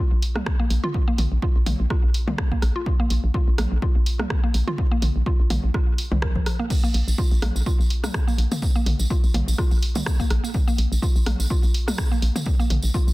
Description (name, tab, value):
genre	minimal techno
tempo	125 BPM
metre	4/4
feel	swing 55% on 16ths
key	unclear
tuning	A4 = 440 Hz
part	mallet-like synth pluck	riff	0.0-13.0 s	F3 to Bb4	-30 LUFS	equal	chorus, sidechain pumping, digital delay
part	hollow knocking FM bass	bass	0.1-13.1 s	Bb1 to C2	-22 LUFS	equal	tube saturation, sidechain pumping
part	punchy analog drum machine	drums	0.2-12.8 s	crash cymbal, hi-hat, rim click	-31 LUFS	right 1 dB	studio ambience, soft clipping on snare
part	techno drum kit	percussion	0.4-12.8 s	rim click, toms	-30 LUFS	equal	soft clipping on snare, studio ambience, digital delay
part	electronic kick drum	drums	0.5-13.1 s	none	-22 LUFS	equal	studio ambience
part	tambourine	percussion	6.7-13.1 s	none	-35 LUFS	right 2 dB	none
room	little or no reverb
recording	dense, heavily limited modern master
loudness	-19 LUFS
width	side -20 dB against mid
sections	0.0-13.1 A section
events	none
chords	0.0 Bb5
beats	0.46 | 0.94 1.42 1.90 2.38 | 2.86 3.34 3.82 4.30 | 4.78 5.26 5.74 6.22 | 6.70 7.18 7.66 8.14 | 8.62 9.10 9.58 10.06 | 10.54 11.02 11.50 11.98 | 12.46 12.94